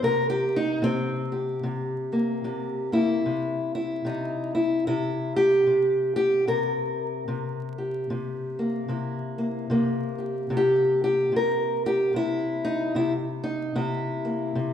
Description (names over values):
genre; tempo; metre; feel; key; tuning
acoustic country blues, solo or duo; 74 BPM; 4/4; swing 60% on 8ths; C mixolydian; A4 = 439 Hz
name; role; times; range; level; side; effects
fingerpicked steel-string acoustic guitar; solo; 0.0-14.7 s; C3 to Bb4; -23 LUFS; left 1 dB; none
room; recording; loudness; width
wet recital hall reverb, RT60 1.5 s; recorded in a church or concert hall, vinyl crackle; -23 LUFS; side -9 dB against mid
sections
0.0-3.2 A section; 3.2-14.7 B section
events
steel-string acoustic guitar solo 0.0-3.2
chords
0.0 C7(no3); 3.2 C7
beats
| 0.03 0.83 1.64 2.44 | 3.25 4.06 4.86 5.67 | 6.48 7.29 8.10 8.90 | 9.71 10.52 11.33 12.14 | 12.95 13.76 14.57